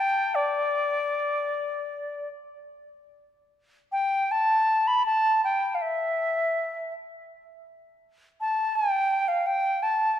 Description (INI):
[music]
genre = celtic folk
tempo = free time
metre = none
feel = none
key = D dorian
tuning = A4 = 440 Hz
[part]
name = bright reedy baroque flute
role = solo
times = 0.0-10.2 s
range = D5 to B5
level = -24 LUFS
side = left 1 dB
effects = none
[sound]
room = wet church reverb, RT60 2.5 s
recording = minimal, uncompressed stereo recording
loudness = -23 LUFS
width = side -10 dB against mid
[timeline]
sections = 0.0-2.7 A section; 2.7-10.2 A section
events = none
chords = none